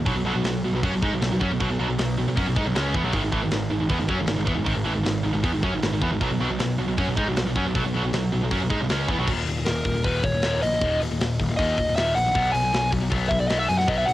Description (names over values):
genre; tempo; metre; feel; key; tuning
heavy metal; 156 BPM; 4/4; straight; unclear; A4 = 441 Hz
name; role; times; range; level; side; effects
distorted electric guitar; riff; 0.0-14.1 s; Eb2 to Eb4; -29 LUFS; left 5 dB; overdrive, cassette tape
tight distorted guitar; riff; 0.0-9.3 s; Ab2 to Eb4; -26 LUFS; right 6 dB; distortion, cassette tape
fuzz picked electric bass; bass; 0.0-14.1 s; Eb1 to Ab2; -26 LUFS; equal; overdrive
tight metal drum kit; drums; 0.1-14.1 s; crash cymbal, hi-hat, kick drum, snare drum; -28 LUFS; equal; cassette tape
dark smooth lead guitar; melody; 9.7-14.1 s; Bb4 to Ab5; -24 LUFS; equal; overdrive, cassette tape, tape echo
room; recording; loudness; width
small room ambience; home recording on cassette; -21 LUFS; side -15 dB against mid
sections
0.0-9.3 A section; 9.3-14.1 B section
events
lead electric guitar solo 9.3-14.1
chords
0.1 B5; 3.1 Ab5; 6.2 B5; 9.3 Eb5; 12.4 B5